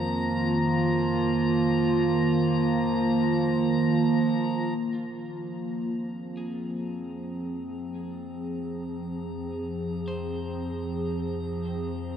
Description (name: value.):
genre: ambient.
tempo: free time.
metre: none.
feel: none.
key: F minor.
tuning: A4 = 440 Hz.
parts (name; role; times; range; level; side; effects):
warbly tape-like pad; sustained chords; 0.0-12.2 s; Eb3 to Ab4; -26 LUFS; right 2 dB; chorus, built-in reverb.
deep rumbling drone; bass; 0.0-12.2 s; F2; -40 LUFS; left 1 dB; built-in reverb.
hand-pumped harmonium; drone; 0.0-12.2 s; F3; -37 LUFS; left 2 dB; none.
drifting glass-harmonics texture; texture; 0.0-12.2 s; Bb5; -37 LUFS; left 3 dB; chorus, built-in reverb.
electric guitar at the edge of break-up; arpeggios; 4.9-12.2 s; F4 to C5; -48 LUFS; equal; tremolo, diffuse ambient delay.
room: wet huge ambient reverb, RT60 7.4 s.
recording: dark, warm production.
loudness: -25 LUFS.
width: side -8 dB against mid.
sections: 0.0-4.8 A section; 4.8-12.2 B section.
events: fade-in on clean electric guitar 4.8-12.2; fade-in on harmonium 4.8-12.2; fade-in on synth texture 4.8-12.2.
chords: 0.0 Eb5; 4.8 Fm.